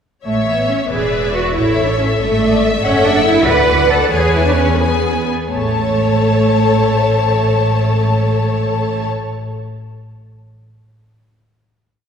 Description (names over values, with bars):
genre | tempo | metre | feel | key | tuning
quick classical-period movement for string orchestra | 83-94 BPM (dotted quarters) | 6/8 | straight | A major | A4 = 440 Hz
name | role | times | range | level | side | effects
rich symphonic cello section | bass | 0.2-9.0 s | A3 to B4 | -18 LUFS | right 3 dB | none
warm symphonic violin section | melody | 0.3-9.0 s | C#5 to A5 | -21 LUFS | left 5 dB | none
warm symphonic violin section | second line | 0.3-9.0 s | B4 to E5 | -20 LUFS | left 1 dB | none
warm symphonic viola section | accompaniment | 0.3-9.1 s | G#4 to C#5 | -21 LUFS | left 3 dB | none
rich symphonic double bass section | bass | 0.3-9.1 s | E1 to E2 | -19 LUFS | right 1 dB | none
room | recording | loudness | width
wet concert hall reverb, RT60 2.1 s | heard from further back in the room | -12 LUFS | side -7 dB against mid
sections
0.2-5.5 A section; 5.5-8.3 final chord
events
slowing down 2.2-5.5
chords
0.2 A; 0.9 E7; 1.6 A; 2.8 F#m; 3.5 Bm7/D; 4.1 E; 5.5 A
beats
| 0.25 0.90 | 1.55 2.19 | 2.83 3.47 | 4.12 4.80 | 5.51 6.20 | 6.89 7.59